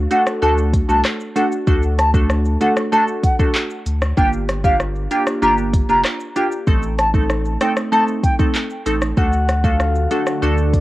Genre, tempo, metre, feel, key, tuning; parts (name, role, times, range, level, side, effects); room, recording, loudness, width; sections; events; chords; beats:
dancehall; 96 BPM; 4/4; straight; A4 = 441 Hz
glassy wavetable pluck; accompaniment; 0.0-10.8 s; A3 to A4; -20 LUFS; equal; chorus, sidechain pumping, cassette tape
warm sub bass; bass; 0.0-10.8 s; F1 to D2; -20 LUFS; equal
reedy wooden flute; melody; 0.1-8.3 s; F5 to Bb5; -18 LUFS; equal; cassette tape
deep house drum kit; drums; 0.1-10.8 s; handclaps, hi-hat, kick drum, rim click, shaker; -19 LUFS; equal; cassette tape
soft octave-layered synth lead; second line; 9.2-10.8 s; D5 to F#5; -23 LUFS; left 2 dB; chorus, cassette tape, analog delay
deep dark ambient pad; sustained chords; 9.8-10.8 s; D3 to A4; -27 LUFS; right 2 dB; chorus, built-in reverb, sidechain pumping, cassette tape
little or no reverb; home recording on cassette; -15 LUFS; side -16 dB against mid
0.0-9.2 A section; 9.2-10.8 B section
0.0 D; 4.2 Gm7; 6.7 Adim; 9.2 D
0.42 1.05 | 1.67 2.30 2.92 3.55 | 4.17 4.80 5.42 6.05 | 6.67 7.30 7.92 8.55 | 9.17 9.80 10.42